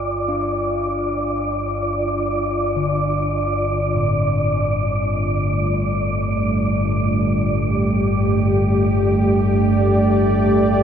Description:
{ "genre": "ambient", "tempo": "free time", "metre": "none", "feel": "none", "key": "unclear", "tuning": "A4 = 440 Hz", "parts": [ { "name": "quartz singing bowl", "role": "arpeggios", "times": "0.0-10.8 s", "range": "A2 to F4", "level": "-24 LUFS", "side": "left 1 dB", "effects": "tape echo" }, { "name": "deep rumbling drone", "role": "drone", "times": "0.0-10.8 s", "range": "G1 to G2", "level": "-21 LUFS", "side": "left 1 dB", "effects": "built-in reverb" }, { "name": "wind-like tuned noise texture", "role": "texture", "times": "0.0-10.8 s", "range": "D5", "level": "-24 LUFS", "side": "right 1 dB", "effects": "built-in reverb" }, { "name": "dark analog pad", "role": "sustained chords", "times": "5.6-10.8 s", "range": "A3 to D5", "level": "-19 LUFS", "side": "right 2 dB", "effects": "chorus" } ], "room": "moderate plate reverb, RT60 2.9 s", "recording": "echo-heavy mix, cassette tape", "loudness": "-17 LUFS", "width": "side -8 dB against mid", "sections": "0.0-10.8 A section", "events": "fade-in on synth drone 0.0-10.8", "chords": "0.0 Gsus2", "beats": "free time" }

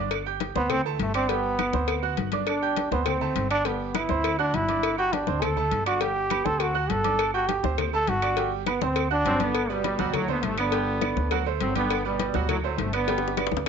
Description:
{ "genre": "latin, salsa", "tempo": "204 BPM", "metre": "4/4", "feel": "straight", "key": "G major", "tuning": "A4 = 439 Hz", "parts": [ { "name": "bright upright piano", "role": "accompaniment", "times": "0.0-13.6 s", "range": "F#3 to G6", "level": "-30 LUFS", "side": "right 15 dB", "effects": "none" }, { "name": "upright bass", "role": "bass", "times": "0.0-13.7 s", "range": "G1 to D2", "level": "-31 LUFS", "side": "equal", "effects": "none" }, { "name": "claves", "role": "percussion", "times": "0.1-13.5 s", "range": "none", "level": "-35 LUFS", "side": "right 16 dB", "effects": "none" }, { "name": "congas", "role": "percussion", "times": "0.1-13.7 s", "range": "none", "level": "-33 LUFS", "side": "left 14 dB", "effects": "none" }, { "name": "cowbell and bongos", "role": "percussion", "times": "0.1-13.7 s", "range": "none", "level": "-32 LUFS", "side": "left 15 dB", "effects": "none" }, { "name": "bright trombone", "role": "melody", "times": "0.6-9.5 s", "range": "E3 to A4", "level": "-26 LUFS", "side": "equal", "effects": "none" }, { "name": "bright trombone section", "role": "melody", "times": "9.3-13.5 s", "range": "A2 to C4", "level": "-28 LUFS", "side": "equal", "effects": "slapback echo" } ], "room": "moderate spring reverb, RT60 1.4 s, small room ambience", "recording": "1960s-style stereo with parts hard left and right, nothing above 7.8 kHz", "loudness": "-23 LUFS", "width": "side -6 dB against mid", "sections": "0.0-9.5 A section; 9.5-13.7 B section", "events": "trombone solo 0.0-9.5; drum fill 13.1-13.7", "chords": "0.1 G5; 0.7 D5; 1.3 G; 1.9 D7; 2.5 G5; 3.1 D5; 3.7 G; 4.2 D7; 4.8 G5; 5.4 D5; 6.0 G; 6.6 D7; 7.2 G5; 7.8 D7; 8.4 G; 9.0 D7; 9.5 G; 10.1 D7; 10.7 G; 11.3 D7; 11.9 G; 12.5 D7; 13.1 G", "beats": "| 0.11 0.41 0.70 1.00 | 1.29 1.59 1.88 2.18 | 2.47 2.77 3.06 3.36 | 3.65 3.95 4.24 4.54 | 4.83 5.13 5.42 5.72 | 6.01 6.31 6.60 6.90 | 7.19 7.49 7.78 8.07 | 8.37 8.66 8.96 9.25 | 9.55 9.84 10.14 10.43 | 10.73 11.02 11.31 11.61 | 11.90 12.20 12.49 12.79 | 13.08 13.37 13.67" }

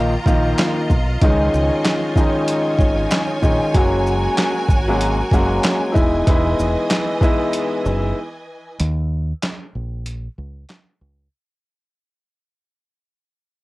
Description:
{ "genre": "hip hop, boom-bap hip-hop", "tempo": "95 BPM", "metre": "4/4", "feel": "swing 60% on 16ths", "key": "Eb minor", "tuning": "A4 = 440 Hz", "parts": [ { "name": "clear upright piano", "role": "accompaniment", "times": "0.0-8.2 s", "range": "Eb3 to Gb4", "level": "-19 LUFS", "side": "left 1 dB", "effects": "low-pass filter, cassette tape" }, { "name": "clear studio string section", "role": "sustained chords", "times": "0.0-8.8 s", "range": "E3 to Bb5", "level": "-26 LUFS", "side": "right 1 dB", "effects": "cassette tape" }, { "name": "deep dub fingered electric bass", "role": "bass", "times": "0.0-11.3 s", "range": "E1 to Eb2", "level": "-21 LUFS", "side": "equal", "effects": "none" }, { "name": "boom bap sampler-style drum kit", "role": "drums", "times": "0.3-10.9 s", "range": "handclaps, hi-hat, kick drum, shaker, snare drum", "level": "-18 LUFS", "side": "equal", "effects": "none" } ], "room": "little or no reverb", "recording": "home recording on cassette", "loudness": "-16 LUFS", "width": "side -20 dB against mid", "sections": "0.0-8.8 A section; 8.8-11.3 B section", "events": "break 8.2-8.8, 8.8-11.3; fade-out 8.8-11.3", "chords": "0.0 Ebsus2; 1.2 Dbadd9; 3.7 Gbadd9; 6.0 Emaj7; 8.8 Eb5", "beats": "0.59 | 1.22 1.85 2.48 3.11 | 3.74 4.38 5.01 5.64 | 6.27 6.90 7.53 8.16 | 8.80 9.43 10.06 10.69" }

